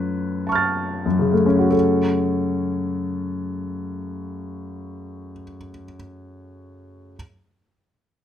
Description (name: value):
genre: classical, impressionist solo piano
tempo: 29-37 BPM (dotted quarters)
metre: 6/8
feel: rubato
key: F# minor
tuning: A4 = 440 Hz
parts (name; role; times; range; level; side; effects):
- clear grand piano; solo; 0.0-7.2 s; F#2 to A6; -21 LUFS; left 1 dB; none
room: light reverb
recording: close, detailed microphones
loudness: -19 LUFS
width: side -10 dB against mid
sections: 0.0-1.7 A section; 1.7-5.0 B section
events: slowing down 0.0-1.7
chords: 0.0 C#aug7/F#; 1.7 F#m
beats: | 1.73 3.38